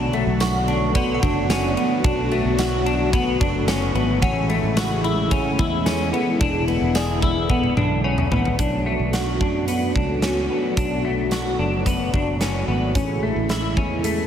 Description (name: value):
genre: dream pop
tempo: 110 BPM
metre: 4/4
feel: straight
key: unclear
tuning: A4 = 440 Hz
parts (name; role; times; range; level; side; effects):
- phased analog pad; sustained chords; 0.0-14.3 s; C#3 to F#4; -24 LUFS; right 1 dB; phaser, chorus
- semi-hollow electric guitar; arpeggios; 0.0-14.3 s; A3 to G#4; -24 LUFS; left 3 dB; analog chorus, tape echo
- fingered electric bass; bass; 0.0-14.3 s; E1 to F#2; -25 LUFS; right 1 dB; none
- huge arena drum kit; drums; 0.1-14.2 s; hi-hat, kick drum, ride cymbal, snare drum, tambourine, toms; -25 LUFS; equal; none
- synth chime; texture; 0.4-8.8 s; C#5 to C#6; -33 LUFS; right 2 dB; ensemble chorus, tremolo, tape echo
room: moderate scoring stage reverb, RT60 1.9 s, studio reverb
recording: heavily compressed radio sound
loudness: -18 LUFS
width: side -9 dB against mid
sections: 0.0-8.6 A section; 8.6-14.3 B section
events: drum fill 7.5-8.6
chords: 0.0 Bm7; 4.2 Amaj7; 6.4 E7; 8.6 Bm7; 13.0 Amaj7